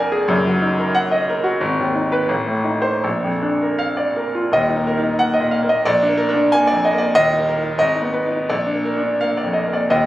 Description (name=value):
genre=classical, romantic character piece for solo piano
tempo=77-95 BPM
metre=2/4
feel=rubato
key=Eb minor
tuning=A4 = 440 Hz
part: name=clear grand piano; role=solo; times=0.0-10.1 s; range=Eb1 to Ab5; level=-16 LUFS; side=equal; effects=none
room=moderate recital hall reverb, RT60 1.3 s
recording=recorded on a phone in the room, club ambience, compression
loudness=-16 LUFS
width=side -15 dB against mid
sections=0.0-4.5 A section; 4.5-10.1 B section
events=none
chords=0.3 Ebm/Gb; 1.6 Abm; 2.3 Adim; 3.0 Bb; 4.5 Ebm; 5.9 Bb7; 7.1 Eb5; 7.8 Abm; 8.5 Bb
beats=| 0.30 0.94 | 1.60 2.29 | 3.04 3.80 | 4.54 5.21 | 5.86 6.50 | 7.14 7.79 | 8.49 9.22 | 9.92